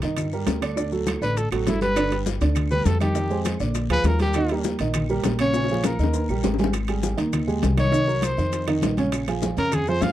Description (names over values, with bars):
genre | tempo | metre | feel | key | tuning
Afro-Cuban jazz | 201 BPM | 4/4 | straight | Eb major, Ab major from 6.7 s | A4 = 441 Hz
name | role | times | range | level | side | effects
dark baby grand piano | accompaniment | 0.0-10.1 s | Db3 to Eb5 | -26 LUFS | right 3 dB | none
upright bass | bass | 0.0-10.1 s | G1 to G2 | -25 LUFS | left 1 dB | none
bongos | percussion | 0.0-10.1 s | none | -31 LUFS | left 12 dB | none
congas | percussion | 0.0-10.1 s | none | -29 LUFS | left 1 dB | none
guiro | percussion | 0.0-10.1 s | none | -43 LUFS | left 11 dB | none
maracas | percussion | 0.0-10.1 s | none | -40 LUFS | left 20 dB | none
timbales | percussion | 0.0-10.1 s | none | -33 LUFS | right 10 dB | none
claves | percussion | 0.2-9.9 s | none | -42 LUFS | right 9 dB | none
clear trumpet | melody | 1.2-10.1 s | C4 to F5 | -25 LUFS | left 1 dB | none
room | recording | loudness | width
light reverb | dry, close 1970s-style studio recording | -20 LUFS | side -13 dB against mid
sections
0.0-6.7 A section; 6.7-10.1 A section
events
trumpet solo 0.0-10.1; drum fill 5.5-6.7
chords
0.0 Cm9 (rootless); 0.8 D; 2.0 G; 3.2 Fm9; 3.8 Bb7; 4.4 Eb; 5.5 Bbm7; 6.1 Eb; 6.7 Abmaj7; 7.9 Cm7b5; 8.5 Bbmadd11; 9.1 Bbm7